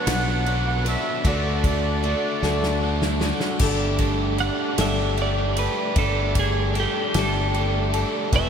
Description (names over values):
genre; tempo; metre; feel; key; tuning
folk rock and heartland rock; 51 BPM (dotted quarters); 6/8; straight; unclear; A4 = 436 Hz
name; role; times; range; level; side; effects
accordion; melody; 0.0-2.8 s; D5 to F#5; -28 LUFS; right 2 dB; light tremolo tuning
picked acoustic archtop guitar; accompaniment; 0.0-8.5 s; B2 to B4; -28 LUFS; left 4 dB; none
tonewheel organ; sustained chords; 0.0-8.5 s; A3 to E6; -34 LUFS; equal; slow rotary speaker, chorus vibrato
crunchy overdriven guitar; riff; 0.0-8.5 s; E2 to G4; -28 LUFS; right 1 dB; wide subtle chorus
fingered electric bass; bass; 0.1-8.5 s; E1 to D2; -24 LUFS; equal; none
natural country drum kit; drums; 0.1-8.5 s; crash cymbal, kick drum, ride cymbal, snare drum; -27 LUFS; equal; none
twelve-string electric guitar; second line; 4.4-8.5 s; G4 to F#5; -27 LUFS; right 5 dB; analog delay
room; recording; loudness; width
wet lush hall reverb, RT60 3.3 s; dreamy mix soaked in reverb; -20 LUFS; side -7 dB against mid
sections
0.0-3.6 A section; 3.6-8.5 B section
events
drum fill 2.4-3.6; clean electric guitar solo 3.6-8.5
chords
0.0 Bm7; 1.2 D; 3.6 Gsus2